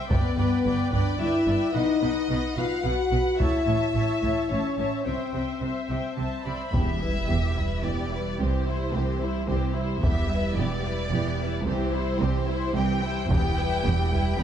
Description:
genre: cinematic, epic orchestral film score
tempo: 110 BPM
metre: 3/4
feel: straight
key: E minor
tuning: A4 = 440 Hz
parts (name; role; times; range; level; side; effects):
- warm symphonic violin section; melody; 0.0-14.4 s; C5 to B5; -34 LUFS; left 2 dB; none
- rich symphonic viola section; accompaniment; 0.0-14.4 s; E3 to E5; -33 LUFS; equal; none
- warm symphonic violin section; second line; 0.1-14.4 s; E4 to F#5; -33 LUFS; left 4 dB; none
- dark French horn section; sustained chords; 0.1-14.4 s; E3 to G4; -29 LUFS; left 3 dB; none
- rich symphonic cello section; bass; 0.1-14.4 s; C2 to C3; -31 LUFS; right 3 dB; none
- rich symphonic double bass section; bass; 0.1-14.4 s; E1 to C2; -29 LUFS; right 3 dB; none
- solo taiko drums; drums; 0.1-14.4 s; none; -28 LUFS; equal; none
- timpani; percussion; 6.7-7.5 s; E2; -33 LUFS; equal; none
- sub drop; sound effects; 6.9-8.4 s; none; -34 LUFS; equal; none
room: moderate scoring stage reverb, RT60 1.5 s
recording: dark, warm production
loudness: -23 LUFS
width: side -9 dB against mid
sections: 0.0-6.7 A section; 6.7-14.4 B section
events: impact 6.7-8.4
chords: 0.1 G; 1.7 B; 3.4 A; 5.1 C; 6.7 Em; 8.4 C; 10.0 Em; 11.7 C; 13.3 Em

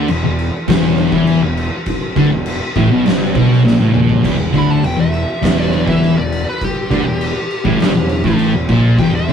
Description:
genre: stoner and doom metal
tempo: 101 BPM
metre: 4/4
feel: straight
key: E minor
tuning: A4 = 440 Hz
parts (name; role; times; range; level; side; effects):
- fuzz guitar; riff; 0.0-9.3 s; E2 to E3; -14 LUFS; left 1 dB; distortion
- fuzz picked electric bass; bass; 0.0-9.3 s; E1 to E2; -20 LUFS; right 1 dB; overdrive
- oversized low-tuned drum kit; drums; 0.1-9.3 s; crash cymbal, kick drum, snare drum, toms; -18 LUFS; equal; none
- fuzz lead guitar; melody; 4.6-9.3 s; G4 to B5; -23 LUFS; equal; wah, distortion
room: light reverb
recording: rough rehearsal-room recording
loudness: -12 LUFS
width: side -7 dB against mid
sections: 0.0-4.2 A section; 4.2-9.3 B section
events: drum fill 3.6-4.2; lead electric guitar solo 4.2-9.3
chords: 0.0 Em

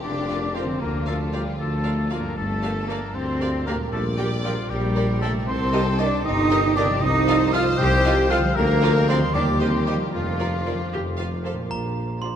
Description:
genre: cinematic, playful, whimsical film cue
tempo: 77 BPM (dotted quarters)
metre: 6/8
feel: straight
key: Bb major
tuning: A4 = 440 Hz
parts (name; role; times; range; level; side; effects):
- rich chamber violin section; melody; 0.0-12.4 s; F4 to D5; -32 LUFS; left 2 dB; none
- bright concert flute; second line; 0.0-10.9 s; F5 to G6; -31 LUFS; right 3 dB; none
- mellow oboe; second line; 0.0-10.9 s; F4 to G5; -30 LUFS; left 4 dB; none
- dark French horn section; sustained chords; 0.0-10.9 s; F3 to G4; -29 LUFS; right 1 dB; none
- concert harp; arpeggios; 0.0-12.4 s; G2 to Bb4; -29 LUFS; right 1 dB; none
- clear chamber cello section; bass; 0.0-12.3 s; Bb2 to G4; -28 LUFS; right 1 dB; none
- mellow tuba; bass; 0.0-12.3 s; F1 to Eb2; -28 LUFS; equal; none
- rich chamber double bass section; bass; 0.0-12.3 s; F1 to F2; -28 LUFS; left 1 dB; none
- rich chamber violin section; second line; 0.3-12.4 s; F4 to G5; -35 LUFS; right 1 dB; none
- rich chamber viola section; accompaniment; 0.3-12.4 s; F3 to Bb4; -33 LUFS; equal; none
- glockenspiel with hard plastic mallets; melody; 11.7-12.4 s; Bb5 to C6; -38 LUFS; right 4 dB; none
room: wet cathedral reverb, RT60 6.6 s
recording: in a vast, echoing space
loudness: -20 LUFS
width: side -9 dB against mid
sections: 0.0-11.7 A section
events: none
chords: 0.0 Bb; 0.8 Bb/D; 2.4 Gm7; 3.9 Gm/Bb; 5.5 Cm7; 7.0 F7/C; 8.6 Bb/D; 9.3 Cm/Eb; 10.1 Bb/F; 10.9 F; 11.7 Bb

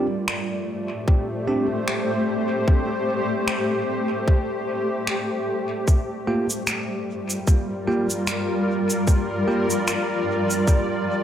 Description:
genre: ambient dub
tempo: 75 BPM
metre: 4/4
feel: swing 57% on 16ths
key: G minor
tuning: A4 = 440 Hz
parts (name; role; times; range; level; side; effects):
- granular cloud pad; sustained chords; 0.0-11.2 s; G3 to D5; -23 LUFS; left 1 dB; built-in reverb
- bell-like tine electric piano; stabs; 0.0-9.7 s; Bb3 to G4; -28 LUFS; right 2 dB; dub echo
- electronic finger snaps and shaker; drums; 0.3-10.9 s; none; -28 LUFS; equal; dub echo
- electronic kick drum; drums; 1.1-10.9 s; none; -17 LUFS; equal; none
room: moderate echo chamber reverb, RT60 1.9 s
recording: none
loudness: -20 LUFS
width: side -10 dB against mid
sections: 0.0-11.2 A section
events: none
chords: 0.0 D7sus4; 5.9 Gm7

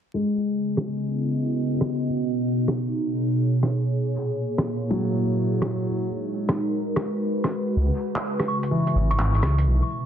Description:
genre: future garage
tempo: 126 BPM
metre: 4/4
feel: swing 66% on 16ths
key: unclear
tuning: A4 = 440 Hz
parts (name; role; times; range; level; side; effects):
- felt-muted upright piano; accompaniment; 0.1-9.9 s; E3 to G#3; -27 LUFS; left 2 dB; ping-pong delay
- warbly tape-like pad; sustained chords; 0.6-10.1 s; A#2 to D#5; -24 LUFS; right 1 dB; chorus, built-in reverb
- lo-fi sampler-style drum kit; drums; 0.8-9.6 s; handclaps, hi-hat, rim click; -26 LUFS; equal; overdrive, soft clipping on snare
- swelling detuned saw bass; bass; 7.8-9.8 s; G#1 to C#2; -20 LUFS; equal; none
- soft synth bell; melody; 8.5-9.4 s; C#6; -30 LUFS; equal; chorus, phaser, vintage 12-bit sampler grit, ping-pong delay
room: moderate digital room reverb, RT60 1.1 s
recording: dense, heavily limited modern master, vinyl crackle, low-pass filter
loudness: -22 LUFS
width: side -9 dB against mid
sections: 0.1-10.1 A section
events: filter sweep 0.1-10.1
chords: 0.1 C#m11; 2.0 B6; 4.0 A#m7b5; 5.9 G#m7; 7.8 C#m7

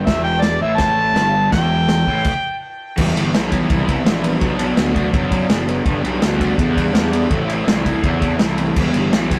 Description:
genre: garage rock duo or trio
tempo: 166 BPM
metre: 4/4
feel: straight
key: E minor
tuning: A4 = 440 Hz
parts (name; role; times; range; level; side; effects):
- raw garage guitar; riff; 0.0-9.4 s; E2 to E4; -23 LUFS; equal; overdrive, phaser
- fuzz picked electric bass; bass; 0.0-9.4 s; E1 to F#2; -23 LUFS; equal; overdrive
- overdriven harmonica; melody; 0.1-2.6 s; D5 to A5; -22 LUFS; equal; digital delay
- vintage drum kit; drums; 0.1-9.4 s; crash cymbal, kick drum, ride cymbal, snare drum; -22 LUFS; equal; none
room: light reverb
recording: rough rehearsal-room recording, warm saturation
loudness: -17 LUFS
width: mono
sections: 0.0-3.0 A section; 3.0-9.4 B section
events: stop 2.2-3.0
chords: 0.0 Em; 4.4 Bm; 5.9 G; 7.3 Am; 8.8 Em

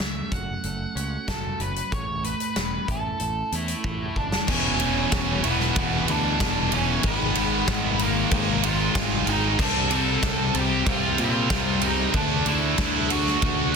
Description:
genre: quiet-loud alternative rock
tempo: 94 BPM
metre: 4/4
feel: straight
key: unclear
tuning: A4 = 440 Hz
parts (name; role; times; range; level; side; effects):
- octave-fuzz lead guitar; melody; 0.0-13.8 s; A#3 to A5; -28 LUFS; equal; distortion, slapback echo
- twelve-string electric guitar; arpeggios; 0.0-4.5 s; A2 to F#4; -34 LUFS; right 8 dB; slapback echo
- growling fingered electric bass; bass; 0.0-13.8 s; E1 to A#2; -29 LUFS; equal; overdrive
- big rock drum kit; drums; 0.0-13.6 s; crash cymbal, hi-hat, kick drum, ride cymbal, snare drum; -26 LUFS; equal; soft clipping on snare
- high-gain distorted guitar; riff; 4.5-13.8 s; E2 to D4; -29 LUFS; left 1 dB; distortion
- sludgy distorted guitar; riff; 4.5-13.7 s; E2 to D4; -30 LUFS; left 14 dB; overdrive
- tight distorted guitar; riff; 4.5-13.7 s; E2 to D4; -27 LUFS; right 15 dB; distortion
room: light reverb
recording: dense, heavily limited modern master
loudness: -21 LUFS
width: side -5 dB against mid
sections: 0.0-4.5 A section; 4.5-13.8 B section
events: drum fill 3.8-4.5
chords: 0.0 F#m; 1.9 A; 4.5 E5; 7.0 G#m; 9.6 Cm; 12.1 D

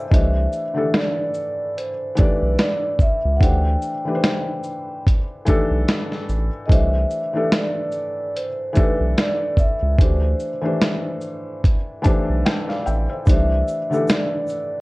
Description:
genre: lo-fi hip hop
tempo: 73 BPM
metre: 4/4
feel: swing 59% on 16ths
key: C major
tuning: A4 = 441 Hz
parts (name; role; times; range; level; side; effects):
- felt-muted upright piano; accompaniment; 0.0-14.8 s; D3 to A5; -24 LUFS; left 1 dB; cassette tape
- vibraphone with soft mallets; melody; 0.1-14.8 s; B4 to G5; -25 LUFS; equal; none
- saturated sub bass; bass; 0.1-13.6 s; A1 to D2; -20 LUFS; equal; none
- dusty soul sampler-style drum kit; drums; 0.1-14.7 s; hi-hat, kick drum, shaker, snare drum; -18 LUFS; equal; none
- egg shaker; percussion; 13.3-14.7 s; none; -49 LUFS; right 5 dB; none
room: light reverb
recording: worn, warbling old tape, cassette tape, warbly pitch drift, nothing above 10.9 kHz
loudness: -18 LUFS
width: side -22 dB against mid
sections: 0.1-14.8 A section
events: none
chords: 0.1 C; 3.4 D9sus4; 6.7 C; 10.0 D9sus4; 13.3 C

